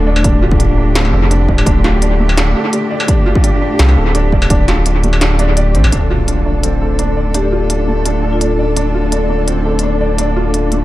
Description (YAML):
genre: half-time drum and bass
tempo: 169 BPM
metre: 4/4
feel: half-time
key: unclear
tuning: A4 = 440 Hz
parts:
  - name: rich chamber cello section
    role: sustained chords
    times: 0.0-10.8 s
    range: A2 to A4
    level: -19 LUFS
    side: left 1 dB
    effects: sidechain pumping
  - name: felt-muted upright piano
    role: arpeggios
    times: 0.0-10.8 s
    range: A3 to D5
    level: -19 LUFS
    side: right 2 dB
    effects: vintage 12-bit sampler grit, low-pass filter, dub echo
  - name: saturated sub bass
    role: bass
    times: 0.0-10.8 s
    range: D1 to C2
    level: -14 LUFS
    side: equal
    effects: tube saturation
  - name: electronic kick drum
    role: drums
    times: 0.2-4.6 s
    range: none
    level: -13 LUFS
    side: equal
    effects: none
  - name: industrial drum kit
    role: drums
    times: 0.2-10.8 s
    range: hi-hat, snare drum, struck metal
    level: -19 LUFS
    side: equal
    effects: analog delay
  - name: impact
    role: sound effects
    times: 5.9-7.3 s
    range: none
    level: -20 LUFS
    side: equal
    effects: none
  - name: flickering grainy texture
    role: texture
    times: 6.4-10.8 s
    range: D4 to D5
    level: -24 LUFS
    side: left 2 dB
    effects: built-in reverb
  - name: vibraphone with hard mallets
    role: melody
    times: 7.3-8.5 s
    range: F4 to G4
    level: -25 LUFS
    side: left 1 dB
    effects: dub echo
room: light reverb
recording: echo-heavy mix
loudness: -11 LUFS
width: side -16 dB against mid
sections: 0.0-5.9 A section; 5.9-10.8 B section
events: impact 5.9-7.3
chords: 0.0 D5